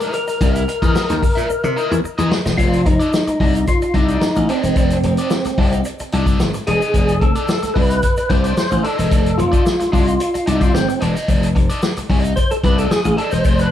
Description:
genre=funk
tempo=110 BPM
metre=4/4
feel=straight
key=F mixolydian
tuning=A4 = 440 Hz
part: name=percussive tonewheel organ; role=melody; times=0.0-13.7 s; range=C4 to C5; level=-20 LUFS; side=equal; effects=overdrive, chorus vibrato, slow rotary speaker
part: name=crunchy overdriven guitar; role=accompaniment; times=0.0-13.7 s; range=Eb4 to E5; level=-26 LUFS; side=left 1 dB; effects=wah
part: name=swinging big-band drum kit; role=drums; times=0.0-13.7 s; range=hi-hat, kick drum, snare drum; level=-18 LUFS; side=left 1 dB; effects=none
part: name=egg shaker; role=percussion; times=0.0-13.7 s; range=none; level=-41 LUFS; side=equal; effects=none
part: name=glassy slap bass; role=bass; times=0.4-13.7 s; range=E1 to C3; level=-18 LUFS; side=left 1 dB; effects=none
room=light reverb, small room ambience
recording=none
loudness=-14 LUFS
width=side -11 dB against mid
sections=0.0-2.6 A section; 2.6-13.7 B section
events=drum fill 1.5-2.6; tonewheel organ solo 2.6-13.7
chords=0.0 C7#9; 2.6 F6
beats=| 0.41 0.95 1.50 2.04 | 2.58 3.13 3.67 4.22 | 4.76 5.31 5.85 6.40 | 6.94 7.48 8.03 8.57 | 9.12 9.66 10.20 10.74 | 11.28 11.82 12.37 12.91 | 13.45

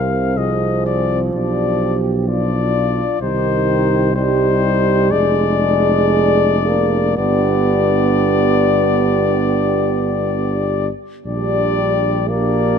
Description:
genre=classical, hymn-like piece for brass band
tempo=56-64 BPM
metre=4/4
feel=rubato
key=unclear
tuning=A4 = 440 Hz
part: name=clear cornet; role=melody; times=0.0-12.8 s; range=C5 to F5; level=-20 LUFS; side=left 13 dB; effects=none
part: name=warm French horn section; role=second line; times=0.0-12.8 s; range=F4 to Bb4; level=-22 LUFS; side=right 9 dB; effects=none
part: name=clear euphonium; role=accompaniment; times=0.0-12.8 s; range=C4 to Eb4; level=-25 LUFS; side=left 4 dB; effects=none
part: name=warm trombone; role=accompaniment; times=0.0-12.8 s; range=C3 to B3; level=-21 LUFS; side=right 5 dB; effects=none
part: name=mellow tuba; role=bass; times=0.0-12.8 s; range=F1 to C2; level=-19 LUFS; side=equal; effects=none
room=light reverb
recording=close, detailed microphones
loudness=-14 LUFS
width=side -7 dB against mid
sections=0.0-12.8 A section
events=none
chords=0.0 Fm/C; 1.3 G7/B; 3.2 Cm; 5.1 Ddim/F; 7.2 G; 11.3 Gm/Bb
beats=0.37 1.34 2.27 | 3.21 4.16 5.12 6.14 | 7.18 8.21 9.23 10.24 | 11.26 12.29

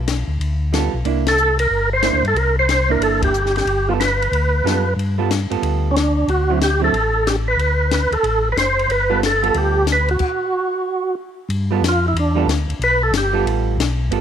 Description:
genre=soul jazz organ trio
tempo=184 BPM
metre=4/4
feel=swing 64% on 8ths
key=G mixolydian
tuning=A4 = 440 Hz
part: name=mellow tonewheel organ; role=bass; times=0.0-14.2 s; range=F#1 to G2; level=-20 LUFS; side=left 1 dB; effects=overdrive, chorus vibrato, slow rotary speaker
part: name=compact cocktail drum kit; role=drums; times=0.1-14.2 s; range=crash cymbal, hi-hat, kick drum, ride cymbal, snare drum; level=-26 LUFS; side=left 7 dB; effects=none
part: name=vintage hollow-body jazz guitar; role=accompaniment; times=0.7-6.9, 9.1-14.2 s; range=D3 to A4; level=-23 LUFS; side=right 11 dB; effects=none
part: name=percussive tonewheel organ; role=melody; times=1.3-13.5 s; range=C#4 to C5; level=-18 LUFS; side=right 1 dB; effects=slow rotary speaker, overdrive, chorus vibrato
room=light reverb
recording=1960s-style stereo with parts hard left and right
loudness=-16 LUFS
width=side -9 dB against mid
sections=0.0-11.5 A section; 11.5-14.2 B section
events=band accent 1.2, 3.2; stop 10.2-11.5; tonewheel organ solo 11.5-14.2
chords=0.0 G9; 1.0 C9; 3.7 G9; 6.3 D7; 8.9 G9; 10.2 N.C.; 11.5 G9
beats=0.07 0.39 0.72 | 1.05 1.38 1.70 2.03 | 2.36 2.68 3.01 3.34 | 3.67 3.99 4.32 4.65 | 4.97 5.30 5.63 5.96 | 6.28 6.61 6.93 7.26 | 7.59 7.92 8.24 8.57 | 8.89 9.22 9.55 9.87 | 10.20 10.53 10.85 11.18 | 11.50 11.83 12.16 12.48 | 12.81 13.13 13.46 13.79 | 14.11

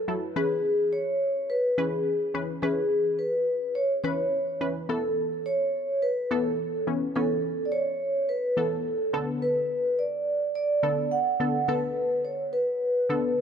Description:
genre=pop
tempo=106 BPM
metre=4/4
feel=straight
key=unclear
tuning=A4 = 438 Hz
part: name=vibraphone with soft mallets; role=melody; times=0.0-13.4 s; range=G#4 to F#5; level=-25 LUFS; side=equal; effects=none
part: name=analog pluck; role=accompaniment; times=0.1-13.4 s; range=D3 to B4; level=-30 LUFS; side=left 2 dB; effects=chorus
room=light reverb, small room ambience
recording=none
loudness=-24 LUFS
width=side -7 dB against mid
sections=0.0-13.4 A section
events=none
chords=0.4 C#m7; 4.9 Esus4; 9.1 Bm7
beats=| 0.36 0.93 1.50 2.06 | 2.63 3.19 3.76 4.33 | 4.89 5.46 6.02 6.59 | 7.16 7.72 8.29 8.85 | 9.42 9.99 10.55 11.12 | 11.68 12.25 12.82 13.38

